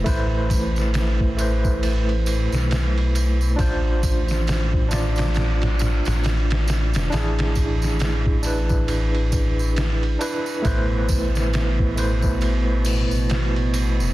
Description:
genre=trip hop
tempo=68 BPM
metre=4/4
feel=swing 59% on 16ths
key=A harmonic minor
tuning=A4 = 440 Hz
part: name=overdriven tine electric piano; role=accompaniment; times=0.0-14.1 s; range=A3 to D5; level=-26 LUFS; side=right 1 dB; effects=medium tremolo, harmonic tremolo, vintage 12-bit sampler grit, low-pass filter, tape echo
part: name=dark detuned saw bass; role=bass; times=0.0-14.1 s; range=E1 to B1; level=-21 LUFS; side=equal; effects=none
part: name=trip hop sampler-style drum kit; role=drums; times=0.1-14.0 s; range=hi-hat, kick drum, ride cymbal, snare drum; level=-25 LUFS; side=equal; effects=overdrive
part: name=tambourine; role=percussion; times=0.1-14.1 s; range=none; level=-37 LUFS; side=right 3 dB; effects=none
part: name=dark studio string section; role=sustained chords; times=10.6-14.1 s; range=B2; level=-28 LUFS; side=right 2 dB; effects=none
room=little or no reverb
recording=dense, heavily limited modern master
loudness=-19 LUFS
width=side -16 dB against mid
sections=0.0-14.1 A section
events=none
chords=0.0 Amadd9; 3.6 Dm7/A; 7.1 E7/A; 10.7 Amadd9

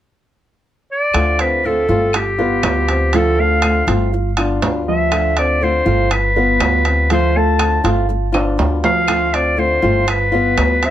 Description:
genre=latin, Cuban son and guajira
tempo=121 BPM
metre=4/4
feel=straight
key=unclear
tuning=A4 = 440 Hz
part: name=bright clarinet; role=melody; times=0.9-10.9 s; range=G4 to A5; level=-17 LUFS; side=left 1 dB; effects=tape echo
part: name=flamenco guitar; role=accompaniment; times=1.1-10.9 s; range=D3 to F4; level=-21 LUFS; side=left 3 dB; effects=none
part: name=upright bass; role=bass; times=1.1-10.9 s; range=G1 to D2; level=-19 LUFS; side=equal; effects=none
part: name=claves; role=percussion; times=1.1-10.8 s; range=none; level=-28 LUFS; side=left 6 dB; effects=none
part: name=timbales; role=percussion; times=1.1-10.9 s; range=none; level=-22 LUFS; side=right 4 dB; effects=none
part: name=dark baby grand piano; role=arpeggios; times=1.4-10.9 s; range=F3 to F5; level=-21 LUFS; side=right 2 dB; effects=none
room=light reverb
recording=close, detailed microphones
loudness=-13 LUFS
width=side -11 dB against mid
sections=0.0-1.1 A section; 1.1-10.9 B section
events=drum fill 8.3-9.1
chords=0.0 N.C.; 1.1 Dm7; 2.1 G7; 3.1 Dm7; 4.1 G7; 5.1 Dm7; 6.1 G7; 7.1 Dm7; 8.1 G7; 9.1 Dm7; 10.1 G7

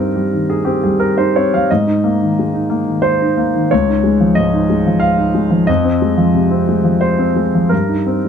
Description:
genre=neoclassical minimalist piano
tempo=90 BPM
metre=3/4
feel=uneven beats, rubato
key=Ab major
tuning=A4 = 439 Hz
part: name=warm grand piano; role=solo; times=0.0-8.3 s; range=Db2 to F5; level=-12 LUFS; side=equal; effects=none
room=moderate small room reverb, RT60 0.5 s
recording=none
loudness=-12 LUFS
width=side -7 dB against mid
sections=0.0-8.3 A section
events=none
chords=0.0 Cm7/G; 1.7 Absus2; 3.7 Dbadd9; 5.7 Fm7; 7.7 Cm7/G

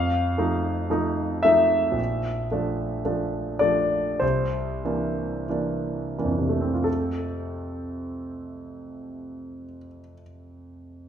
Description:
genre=classical, romantic nocturne for solo piano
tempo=41-57 BPM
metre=4/4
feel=rubato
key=F major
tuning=A4 = 440 Hz
part: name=clear concert grand piano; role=solo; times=0.0-11.1 s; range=Bb1 to F5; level=-23 LUFS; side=equal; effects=none
room=wet recital hall reverb, RT60 1.7 s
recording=minimal, uncompressed stereo recording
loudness=-22 LUFS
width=side -9 dB against mid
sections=0.0-6.9 A section; 6.9-11.1 B section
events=slowing down 0.0-6.9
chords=0.0 F7; 2.0 Bbmaj7; 4.2 C9; 6.9 F

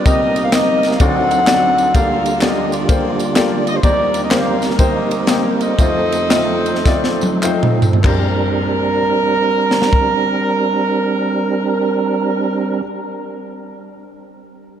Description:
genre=uptempo gospel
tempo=95-127 BPM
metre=4/4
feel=swing 65% on 8ths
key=Bb major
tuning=A4 = 440 Hz
part: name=warm horn section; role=melody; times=0.0-12.8 s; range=F4 to F#5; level=-18 LUFS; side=equal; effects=analog delay
part: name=warm upright piano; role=accompaniment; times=0.0-12.8 s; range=F1 to Eb5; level=-21 LUFS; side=left 4 dB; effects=analog chorus
part: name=percussive tonewheel organ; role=sustained chords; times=0.0-12.8 s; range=D3 to Bb4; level=-20 LUFS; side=right 3 dB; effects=fast rotary speaker, chorus vibrato
part: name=crisp fusion drum kit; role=drums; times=0.1-10.1 s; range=crash cymbal, kick drum, ride cymbal, snare drum, toms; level=-17 LUFS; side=equal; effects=none
part: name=tambourine and handclaps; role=percussion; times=0.1-8.4 s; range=none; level=-28 LUFS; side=equal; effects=none
room=wet cathedral reverb, RT60 5.2 s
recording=dreamy mix soaked in reverb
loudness=-13 LUFS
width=side -9 dB against mid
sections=0.0-8.0 A section; 8.0-13.1 B section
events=slowing down 3.8-8.0; drum fill 6.9-8.0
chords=0.1 Cm7; 1.0 D7b9; 1.9 Gm9/D; 3.8 Eb6; 5.8 F7; 8.0 Bb69

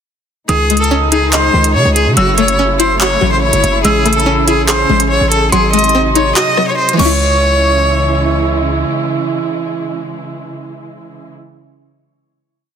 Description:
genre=hip hop, drill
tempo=143 BPM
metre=4/4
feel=half-time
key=C# harmonic minor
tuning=A4 = 443 Hz
part: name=clear cello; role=melody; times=0.5-8.4 s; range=F#4 to D#5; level=-14 LUFS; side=equal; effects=tape echo
part: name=dark detuned synth bell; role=second line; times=0.5-8.4 s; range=B#5 to E6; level=-20 LUFS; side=equal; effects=chorus, tape echo
part: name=string-like resonator pluck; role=accompaniment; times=0.5-11.6 s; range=D#3 to D#5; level=-17 LUFS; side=left 3 dB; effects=chorus
part: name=muted studio string section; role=sustained chords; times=0.5-11.3 s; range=B#2 to G#4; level=-19 LUFS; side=right 2 dB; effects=none
part: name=hard-hitting 808-style bass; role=bass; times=0.5-8.8 s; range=F#1 to C#3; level=-16 LUFS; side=equal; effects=none
part: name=drill drum kit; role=drums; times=0.5-7.1 s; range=crash cymbal, handclaps, hi-hat, rim click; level=-17 LUFS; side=right 1 dB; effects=none
room=light reverb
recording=dense, heavily limited modern master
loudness=-10 LUFS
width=side -8 dB against mid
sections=0.5-7.2 hook; 7.2-10.6 final hit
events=kick muted 6.4-7.2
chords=0.5 C#sus2; 2.2 F#m7; 3.8 Amaj7; 5.5 G#7; 7.0 C#m

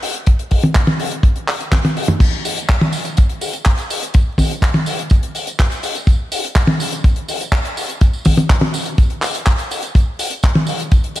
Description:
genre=italo disco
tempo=124 BPM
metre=4/4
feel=straight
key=none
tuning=none
part: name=damped 70s drum kit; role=drums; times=0.0-11.2 s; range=crash cymbal, handclaps, hi-hat, tambourine, toms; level=-18 LUFS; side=equal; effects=small room ambience
part: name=kick drum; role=drums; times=0.3-11.0 s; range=none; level=-13 LUFS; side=equal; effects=small room ambience
room=light reverb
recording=vinyl crackle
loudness=-14 LUFS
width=side -15 dB against mid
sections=0.0-2.2 A section; 2.2-11.2 B section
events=drum fill 1.7-2.2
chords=none

